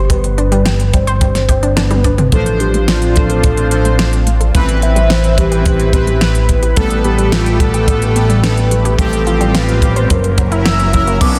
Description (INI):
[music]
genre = synthwave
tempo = 108 BPM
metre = 4/4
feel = straight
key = unclear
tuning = A4 = 440 Hz
[part]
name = soft octave-layered synth lead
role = melody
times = 0.0-11.4 s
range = F4 to E6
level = -21 LUFS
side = equal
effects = chorus, tape echo
[part]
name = analog pluck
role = arpeggios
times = 0.0-11.3 s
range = F#3 to C5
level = -25 LUFS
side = equal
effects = chorus, delay
[part]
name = fat analog bass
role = bass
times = 0.0-11.4 s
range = F#1 to B1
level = -17 LUFS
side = equal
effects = none
[part]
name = kick drum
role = drums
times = 0.1-11.3 s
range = none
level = -18 LUFS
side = equal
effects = none
[part]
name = pop drum kit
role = drums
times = 0.1-11.4 s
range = cabasa, crash cymbal, hi-hat, snare drum, toms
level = -22 LUFS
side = equal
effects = none
[part]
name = lush unison pad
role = sustained chords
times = 2.7-11.4 s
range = D3 to B4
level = -24 LUFS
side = equal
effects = chorus, phaser, sidechain pumping
[part]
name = analog synth brass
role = stabs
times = 2.3-11.4 s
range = E3 to C5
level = -22 LUFS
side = equal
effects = chorus
[part]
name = soft synth bell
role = second line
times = 11.2-11.4 s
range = D6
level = -24 LUFS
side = equal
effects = chorus, phaser
[sound]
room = moderate lush hall reverb, RT60 2.1 s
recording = dense, heavily limited modern master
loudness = -13 LUFS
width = mono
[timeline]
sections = 0.0-2.3 A section; 2.3-11.2 B section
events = drum fill 1.8-2.3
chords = 0.0 Gsus4; 2.3 Dm7/A; 4.5 Cmaj7/A; 6.8 Gadd9/A; 9.0 Fsus2/A; 10.1 F#7